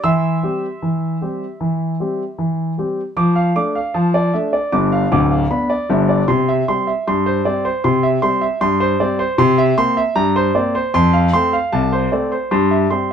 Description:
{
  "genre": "ragtime piano",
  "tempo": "77 BPM",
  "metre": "2/4",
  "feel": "straight",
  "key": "C major",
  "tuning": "A4 = 437 Hz",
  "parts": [
    { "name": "warm concert grand piano", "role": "solo", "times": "0.0-13.1 s", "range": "D1 to E6", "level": "-15 LUFS", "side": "equal", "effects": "none" }
  ],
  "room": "moderate studio reverb, RT60 0.5 s",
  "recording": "none",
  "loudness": "-15 LUFS",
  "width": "side -8 dB against mid",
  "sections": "0.0-3.2 A section; 3.2-13.1 A section",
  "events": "none",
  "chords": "0.0 C/E; 3.2 Dm/F; 4.7 G7; 6.3 C; 9.4 C7; 10.9 F; 12.5 C/G"
}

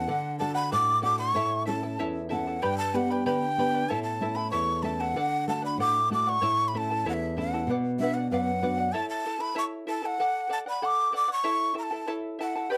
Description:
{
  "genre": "andean folk, Andean ensemble",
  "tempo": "95 BPM",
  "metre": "2/4",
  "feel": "straight",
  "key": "unclear",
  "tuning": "A4 = 440 Hz",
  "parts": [
    { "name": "breathy bright large quena", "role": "melody", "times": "0.0-12.8 s", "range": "E5 to D6", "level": "-30 LUFS", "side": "equal", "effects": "none" },
    { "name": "charango", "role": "accompaniment", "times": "0.0-12.8 s", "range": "E4 to B5", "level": "-34 LUFS", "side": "equal", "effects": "none" },
    { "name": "nylon-string guitar", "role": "accompaniment", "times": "0.0-8.9 s", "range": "E2 to A4", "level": "-33 LUFS", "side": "equal", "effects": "none" }
  ],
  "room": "light reverb",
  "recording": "close, detailed microphones",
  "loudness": "-28 LUFS",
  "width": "mono",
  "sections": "0.0-8.9 A section; 8.9-12.8 A section",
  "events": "none",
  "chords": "0.1 D; 1.4 A; 2.6 G; 3.9 A; 5.2 D; 6.4 A; 7.7 Bm; 8.9 A; 10.2 D; 11.5 A"
}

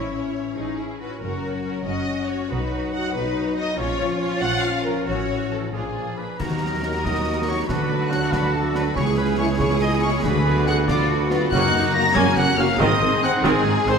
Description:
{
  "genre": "cinematic, heroic adventure film score",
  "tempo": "94 BPM (dotted quarters)",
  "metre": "6/8",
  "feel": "straight",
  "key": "F# major",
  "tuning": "A4 = 441 Hz",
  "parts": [
    { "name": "warm symphonic violin section", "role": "melody", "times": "0.0-14.0 s", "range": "G#4 to A#6", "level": "-30 LUFS", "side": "left 3 dB", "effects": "none" },
    { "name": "warm symphonic violin section", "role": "second line", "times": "0.0-14.0 s", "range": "C#4 to F#5", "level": "-30 LUFS", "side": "left 2 dB", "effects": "none" },
    { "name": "rich symphonic viola section", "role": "accompaniment", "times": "0.0-14.0 s", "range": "D3 to F#4", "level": "-29 LUFS", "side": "right 1 dB", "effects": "none" },
    { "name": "dark French horn section", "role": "sustained chords", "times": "0.0-13.9 s", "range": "E3 to G#4", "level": "-30 LUFS", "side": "left 4 dB", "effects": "none" },
    { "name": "concert harp", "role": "arpeggios", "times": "0.0-14.0 s", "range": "F#2 to E6", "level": "-30 LUFS", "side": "left 4 dB", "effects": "none" },
    { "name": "rich symphonic cello section", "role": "bass", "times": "0.0-14.0 s", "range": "B#3 to A#4", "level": "-28 LUFS", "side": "right 2 dB", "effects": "none" },
    { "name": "rich symphonic double bass section", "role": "bass", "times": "0.0-13.9 s", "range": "F#1 to D#2", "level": "-28 LUFS", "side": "right 4 dB", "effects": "none" },
    { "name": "clear oboe", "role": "second line", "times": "5.7-14.0 s", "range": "G#4 to A#5", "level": "-30 LUFS", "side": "right 1 dB", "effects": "none" },
    { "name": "warm trumpet", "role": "stabs", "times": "5.7-14.0 s", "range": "G#4 to A#5", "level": "-27 LUFS", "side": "right 1 dB", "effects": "none" },
    { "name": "bright clarinet", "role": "second line", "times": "6.4-13.8 s", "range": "E4 to G#4", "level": "-31 LUFS", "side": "left 4 dB", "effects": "none" },
    { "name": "mellow hollow silver concert flute", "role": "second line", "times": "6.4-13.8 s", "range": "G#5 to B#5", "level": "-33 LUFS", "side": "left 4 dB", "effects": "none" },
    { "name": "mellow tuba", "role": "bass", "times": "6.4-14.0 s", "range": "F#1 to D#2", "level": "-27 LUFS", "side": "right 3 dB", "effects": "none" },
    { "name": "concert snare drum, clash cymbals and concert bass drum", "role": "drums", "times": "6.4-14.0 s", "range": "none", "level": "-30 LUFS", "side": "equal", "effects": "none" }
  ],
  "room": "wet recital hall reverb, RT60 1.4 s",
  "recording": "recorded in a church or concert hall",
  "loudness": "-19 LUFS",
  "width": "side -6 dB against mid",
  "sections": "0.0-6.4 A section; 6.4-14.0 B section",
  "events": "none",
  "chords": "0.0 A; 1.2 F#; 2.5 B; 3.8 A#m; 5.1 A; 5.7 A#7; 6.4 D#m; 7.7 D; 9.0 C#m; 10.2 Bm/D; 11.5 F#; 12.8 G#"
}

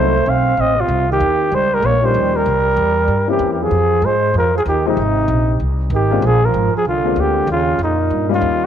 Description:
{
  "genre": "jazz",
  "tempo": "191 BPM",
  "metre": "4/4",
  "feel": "swing 62% on 8ths",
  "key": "Eb mixolydian",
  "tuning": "A4 = 443 Hz",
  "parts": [
    { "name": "trumpet with bucket mute", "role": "melody", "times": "0.0-8.7 s", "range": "Eb4 to F5", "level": "-17 LUFS", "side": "left 1 dB", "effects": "none" },
    { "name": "breathy trombone", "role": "second line", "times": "0.0-8.6 s", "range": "Bb2 to C4", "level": "-21 LUFS", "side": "right 10 dB", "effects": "slapback echo" },
    { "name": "warm baby grand piano", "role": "accompaniment", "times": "0.0-8.7 s", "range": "E3 to A4", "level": "-22 LUFS", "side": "left 11 dB", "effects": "none" },
    { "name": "upright bass", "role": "bass", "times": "0.0-8.7 s", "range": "Ab1 to Ab2", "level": "-19 LUFS", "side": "equal", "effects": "none" }
  ],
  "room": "moderate echo chamber reverb, RT60 2.6 s",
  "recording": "1960s-style stereo with parts hard left and right",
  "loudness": "-14 LUFS",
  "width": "side -9 dB against mid",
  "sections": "0.0-8.7 A section",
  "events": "none",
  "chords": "0.0 Adim; 1.2 Eb7; 2.5 C7b9; 3.7 Fm7; 6.2 Bb7; 7.5 Eb7"
}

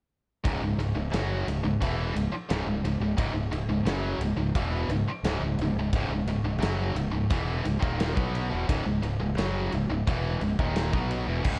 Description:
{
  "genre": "heavy metal",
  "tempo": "87 BPM",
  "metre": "4/4",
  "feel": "straight",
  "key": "C# minor",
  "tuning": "A4 = 440 Hz",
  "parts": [
    { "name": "heavy high-gain guitar", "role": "riff", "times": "0.4-11.6 s", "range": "C#2 to B3", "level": "-31 LUFS", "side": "equal", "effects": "distortion" },
    { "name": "growling fingered electric bass", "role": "bass", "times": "0.5-11.6 s", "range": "C#1 to B1", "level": "-33 LUFS", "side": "equal", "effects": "overdrive" },
    { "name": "big rock drum kit", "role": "drums", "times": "0.5-11.6 s", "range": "crash cymbal, kick drum, ride cymbal, snare drum", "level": "-34 LUFS", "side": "equal", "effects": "none" }
  ],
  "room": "light reverb",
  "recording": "worn, warbling old tape, cassette tape, warbly pitch drift",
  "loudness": "-28 LUFS",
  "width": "mono",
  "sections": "0.4-11.6 A section",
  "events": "none",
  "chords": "0.4 C#m"
}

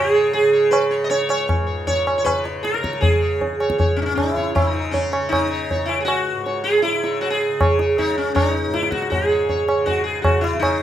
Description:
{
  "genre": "indian classical, Hindustani",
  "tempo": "157 BPM",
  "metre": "4/4",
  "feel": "straight",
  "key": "C# raga kafi",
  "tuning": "A4 = 440 Hz",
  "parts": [
    { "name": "sitar", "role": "melody", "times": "0.0-10.8 s", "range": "C#4 to D#5", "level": "-19 LUFS", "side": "right 1 dB", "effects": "none" },
    { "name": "tanpura", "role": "drone", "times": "0.0-10.8 s", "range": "C#2 to C#3", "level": "-29 LUFS", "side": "left 1 dB", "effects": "none" },
    { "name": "tabla", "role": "percussion", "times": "0.3-10.8 s", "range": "none", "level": "-21 LUFS", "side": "equal", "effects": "none" }
  ],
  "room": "wet studio ambience, RT60 0.5 s",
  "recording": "rough home demo mix",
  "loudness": "-17 LUFS",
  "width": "side -11 dB against mid",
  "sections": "0.0-9.1 A section; 9.1-10.8 B section",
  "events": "none",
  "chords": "none"
}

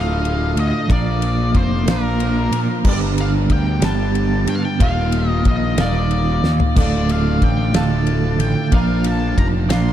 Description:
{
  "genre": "psychedelic rock",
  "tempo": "61 BPM (dotted quarters)",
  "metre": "6/8",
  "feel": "straight",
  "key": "D phrygian",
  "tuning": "A4 = 443 Hz",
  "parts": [
    { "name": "octave-fuzz lead guitar", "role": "melody", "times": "0.0-9.9 s", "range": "Bb4 to C6", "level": "-25 LUFS", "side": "left 2 dB", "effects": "wah, distortion, analog delay" },
    { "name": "twelve-string electric guitar", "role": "riff", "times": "0.0-9.9 s", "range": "D2 to Bb4", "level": "-20 LUFS", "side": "right 2 dB", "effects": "harmonic tremolo" },
    { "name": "fuzz picked electric bass", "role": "bass", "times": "0.0-9.9 s", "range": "D1 to Bb2", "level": "-20 LUFS", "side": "equal", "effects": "overdrive" },
    { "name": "damped 70s drum kit", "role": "drums", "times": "0.2-9.8 s", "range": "crash cymbal, kick drum, ride cymbal, snare drum, toms", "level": "-22 LUFS", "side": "equal", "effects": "none" }
  ],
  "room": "light reverb, studio reverb",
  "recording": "none",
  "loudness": "-15 LUFS",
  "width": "side -11 dB against mid",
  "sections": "0.0-9.9 A section",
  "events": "drum fill 6.4-6.8",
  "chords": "0.0 Dm; 0.9 Bb; 2.8 G; 4.8 Ebsus2; 6.8 Dm; 8.7 Bb"
}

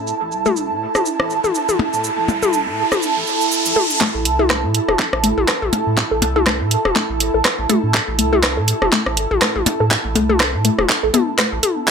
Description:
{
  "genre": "minimal techno",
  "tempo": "122 BPM",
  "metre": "4/4",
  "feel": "swing 57% on 16ths",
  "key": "A minor",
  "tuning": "A4 = 441 Hz",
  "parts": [
    { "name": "saturated sub bass", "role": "bass", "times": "0.0-11.6 s", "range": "E1 to A2", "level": "-23 LUFS", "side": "right 1 dB", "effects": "sidechain pumping, high-pass filter" },
    { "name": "airy breathy pad", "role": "texture", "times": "0.0-11.9 s", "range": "E4 to A5", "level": "-21 LUFS", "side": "right 3 dB", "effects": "chorus, sidechain pumping" },
    { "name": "house drum kit", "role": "drums", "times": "0.1-11.9 s", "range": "handclaps, hi-hat, rim click, shaker", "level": "-19 LUFS", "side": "right 2 dB", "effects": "low-pass filter on perc, low-pass filter on snare, low-pass filter on hats, low-pass filter on room" },
    { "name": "riser", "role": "sound effects", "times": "1.4-4.0, 11.9 s", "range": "none", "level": "-23 LUFS", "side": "right 2 dB", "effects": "none" },
    { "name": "filtered dub chord stab", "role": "stabs", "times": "0.5, 3.8-11.2 s", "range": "A3 to A4", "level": "-25 LUFS", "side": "right 1 dB", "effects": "phaser, analog chorus, dub echo" },
    { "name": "minimal click drum kit", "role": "percussion", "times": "0.5-11.7 s", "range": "percussion blips, rim click, toms", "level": "-21 LUFS", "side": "left 5 dB", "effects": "dub echo" },
    { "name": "resonant blip pluck", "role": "riff", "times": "4.0-11.5 s", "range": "A3 to A4", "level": "-22 LUFS", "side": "left 3 dB", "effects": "chorus, cassette tape, sidechain pumping, dub echo" },
    { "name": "electronic kick drum", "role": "drums", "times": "4.0-11.9 s", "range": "none", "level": "-24 LUFS", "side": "right 1 dB", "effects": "high-pass filter on kick, high-pass filter on room" }
  ],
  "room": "moderate studio reverb, RT60 0.5 s",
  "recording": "none",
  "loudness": "-15 LUFS",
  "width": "side -6 dB against mid",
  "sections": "0.0-4.0 A section; 4.0-11.9 B section",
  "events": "riser 1.4-4.0; build-up 4.0-11.9; drum fill 4.0-11.9; filter sweep on synth pluck 4.0-11.9",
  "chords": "0.0 A5"
}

